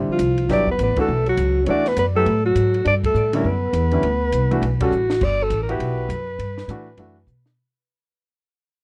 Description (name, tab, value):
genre	modal jazz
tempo	203 BPM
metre	4/4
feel	swing 62% on 8ths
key	unclear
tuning	A4 = 439 Hz
part	warm grand piano	accompaniment	0.0-7.2 s	D3 to A4	-27 LUFS	equal	none
part	upright bass	bass	0.0-7.6 s	G1 to B2	-25 LUFS	equal	none
part	mellow alto saxophone	melody	0.1-7.3 s	F4 to D5	-24 LUFS	equal	tape echo
part	breathy trombone	second line	0.1-4.9 s	F3 to D4	-30 LUFS	equal	none
part	compact cocktail drum kit	drums	0.2-7.5 s	crash cymbal, hi-hat, kick drum, ride cymbal, snare drum	-33 LUFS	equal	none
room	light reverb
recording	dry, close 1970s-style studio recording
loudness	-20 LUFS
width	mono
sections	0.0-5.2 A section; 5.2-7.6 B section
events	band accent 0.9, 3.0, 4.8; drum fill 4.9, 7.3; fade-out 5.2-7.6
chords	0.5 Gmaj9